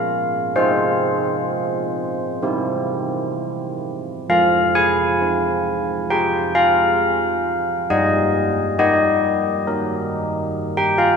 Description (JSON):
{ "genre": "classical, tune for church bells", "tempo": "64-68 BPM", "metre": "4/4", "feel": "straight", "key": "F minor", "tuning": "A4 = 440 Hz", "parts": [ { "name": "carillon bells", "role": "solo", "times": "0.0-11.2 s", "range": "F3 to Ab5", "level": "-17 LUFS", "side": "equal", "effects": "none" } ], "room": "wet church reverb, RT60 3.5 s", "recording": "none", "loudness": "-17 LUFS", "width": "side -6 dB against mid", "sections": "0.0-4.3 A section; 4.3-11.2 B section", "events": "none", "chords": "0.0 Bbm; 0.6 Fm/C; 2.4 C; 4.3 Fm; 7.9 Eb/G", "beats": "| 0.56 1.49 2.43 3.37 | 4.29 5.20 6.09 6.99 | 7.88 8.77 9.66 10.55" }